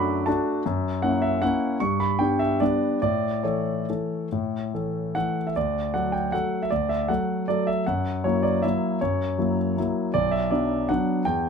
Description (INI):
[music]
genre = classical, piano waltz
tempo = 135-169 BPM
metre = 3/4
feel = rubato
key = D major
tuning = A4 = 441 Hz
[part]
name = clear concert grand piano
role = solo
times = 0.0-11.5 s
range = B1 to D6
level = -22 LUFS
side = equal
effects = none
[sound]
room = moderate studio reverb, RT60 0.8 s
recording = minimal, uncompressed stereo recording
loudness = -22 LUFS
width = side -6 dB against mid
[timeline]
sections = 0.0-5.6 A section; 5.6-11.5 B section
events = none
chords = 0.0 D/F#; 0.7 F#7; 1.8 G; 3.0 A; 5.6 D; 7.9 F#7; 10.1 Bm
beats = 0.27 | 0.65 1.03 1.42 | 1.80 2.19 2.60 | 3.02 3.44 3.88 | 4.31 4.72 5.15 | 5.56 5.93 6.33 | 6.71 7.09 7.49 | 7.87 8.25 8.64 | 9.02 9.38 9.77 | 10.14 10.51 10.89 | 11.25